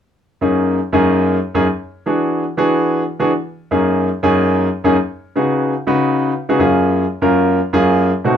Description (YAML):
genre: jazz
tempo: 145 BPM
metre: 4/4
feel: straight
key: F# major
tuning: A4 = 440 Hz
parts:
  - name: clear concert grand piano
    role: solo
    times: 0.4-8.4 s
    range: F#2 to B4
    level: -13 LUFS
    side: equal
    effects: none
room: light reverb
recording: minimal, uncompressed stereo recording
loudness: -14 LUFS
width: side -8 dB against mid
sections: 0.0-6.6 A section; 6.6-8.4 B section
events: none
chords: 0.0 F#6; 1.7 E7; 3.3 F#6; 5.0 C#7sus4; 6.6 F#maj7